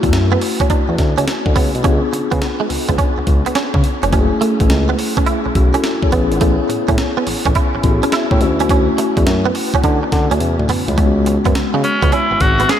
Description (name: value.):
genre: R&B, new jack swing.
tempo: 105 BPM.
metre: 4/4.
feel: swing 66% on 16ths.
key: unclear.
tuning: A4 = 445 Hz.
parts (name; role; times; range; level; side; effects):
mellow tine electric piano; accompaniment; 0.0-12.8 s; G#3 to C#5; -19 LUFS; left 3 dB; medium stereo tremolo.
direct-recorded clean electric guitar; riff; 0.0-12.8 s; G#3 to E4; -20 LUFS; right 5 dB; ensemble chorus.
smooth synth bass; bass; 0.0-12.6 s; E#1 to D3; -18 LUFS; equal; none.
breakbeat sampler-style drum kit; drums; 0.0-12.8 s; hi-hat, kick drum, snare drum, toms; -18 LUFS; equal; none.
breathy tenor saxophone; melody; 11.8-12.8 s; C#4 to G#4; -14 LUFS; equal; none.
room: moderate huge ambient reverb, RT60 4.0 s.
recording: dreamy mix soaked in reverb.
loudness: -13 LUFS.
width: side -10 dB against mid.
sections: 0.0-11.0 A section; 11.0-12.8 B section.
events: drum fill 10.4-11.0.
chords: 0.0 Dmaj9; 1.8 C#7b9; 4.1 F#m7; 6.1 Amaj9; 8.4 Dmaj9; 11.0 C#7sus4.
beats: 0.12 0.70 1.27 | 1.84 2.41 2.98 3.55 | 4.12 4.70 5.27 5.84 | 6.41 6.98 7.55 8.12 | 8.70 9.27 9.84 10.41 | 10.98 11.55 12.12 12.70.